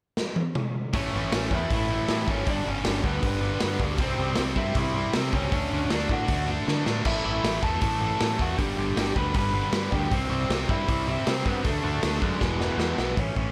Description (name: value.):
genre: punk rock.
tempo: 157 BPM.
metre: 4/4.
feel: straight.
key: unclear.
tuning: A4 = 441 Hz.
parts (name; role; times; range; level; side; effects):
raw garage drum kit; drums; 0.2-13.5 s; crash cymbal, hi-hat, kick drum, snare drum, toms; -30 LUFS; equal; none.
crunchy overdriven guitar; riff; 0.9-13.5 s; E2 to D4; -34 LUFS; equal; none.
distorted electric guitar; riff; 0.9-13.2 s; E2 to D4; -35 LUFS; equal; overdrive.
growling picked electric bass; bass; 0.9-13.5 s; E1 to D3; -33 LUFS; equal; overdrive.
lead guitar through a small cranked amp; melody; 1.0-13.5 s; G#3 to B5; -33 LUFS; equal; overdrive.
room: little or no reverb.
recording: none.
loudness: -26 LUFS.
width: mono.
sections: 0.9-13.2 A section.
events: drum fill 0.2-0.9, 6.7-7.1, 12.4-13.2.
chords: 0.0 N.C.; 0.9 A; 2.5 G; 4.0 C; 5.5 D; 7.1 A5; 8.6 G; 10.1 C; 11.7 D; 12.4 E.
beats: 0.18 0.57 | 0.95 1.33 1.71 2.10 | 2.48 2.86 3.24 3.62 | 4.01 4.39 4.77 5.15 | 5.54 5.92 6.30 6.68 | 7.07 7.45 7.83 8.21 | 8.59 8.98 9.36 9.74 | 10.12 10.51 10.89 11.27 | 11.65 12.04 12.42 12.80 | 13.19.